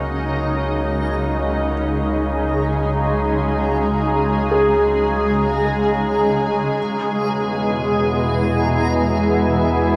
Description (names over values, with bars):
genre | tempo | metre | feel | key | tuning
ambient | free time | none | none | unclear | A4 = 439 Hz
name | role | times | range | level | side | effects
shimmering ambient pad | sustained chords | 0.0-10.0 s | B2 to Ab4 | -21 LUFS | equal | chorus, built-in reverb, plate reverb
felt-muted upright piano | arpeggios | 0.0-6.8 s | Ab4 to Bb4 | -27 LUFS | equal | tape echo, plate reverb
round analog bass | bass | 0.0-10.0 s | Db2 to E2 | -28 LUFS | equal | none
hand-pumped harmonium | drone | 0.0-10.0 s | Gb3 to Db4 | -33 LUFS | equal | plate reverb
backwards swelling texture | texture | 0.1-10.0 s | Bb5 | -31 LUFS | equal | built-in reverb, plate reverb
room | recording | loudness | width
wet booth ambience, RT60 0.2 s | home recording on cassette | -19 LUFS | mono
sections
0.0-10.0 A section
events
none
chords
0.0 Dbsus2; 6.8 E